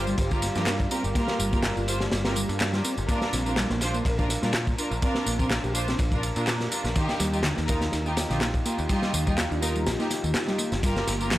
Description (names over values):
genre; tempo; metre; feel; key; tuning
breakbeat, breaks; 124 BPM; 4/4; swing 54% on 16ths; G minor; A4 = 439 Hz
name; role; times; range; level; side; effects
deep dark ambient pad; sustained chords; 0.0-11.4 s; G3 to F5; -36 LUFS; left 1 dB; chorus, built-in reverb, sidechain pumping
warm studio string section; stabs; 0.0-11.3 s; D4 to C5; -30 LUFS; right 1 dB; tape echo
picked electric bass; bass; 0.0-11.4 s; G1 to Bb2; -30 LUFS; equal; none
mellow tonewheel organ; riff; 0.1-11.4 s; D3 to Bb4; -31 LUFS; equal; chorus vibrato, slow rotary speaker, tape echo
electronic tambourine and handclaps; drums; 0.1-11.4 s; none; -32 LUFS; equal; none
crunchy breakbeat drum kit; drums; 0.2-11.4 s; kick drum, ride cymbal, snare drum; -28 LUFS; equal; none
room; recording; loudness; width
studio reverb; dry, gritty hardware recording; -23 LUFS; side -15 dB against mid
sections
0.0-11.4 A section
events
none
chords
0.0 Gm7; 3.1 Bb; 7.0 Ebadd9; 10.8 Gm7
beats
0.19 0.67 | 1.15 1.64 2.12 2.60 | 3.09 3.57 4.06 4.54 | 5.03 5.51 5.99 6.48 | 6.96 7.44 7.93 8.41 | 8.90 9.38 9.86 10.35 | 10.83 11.31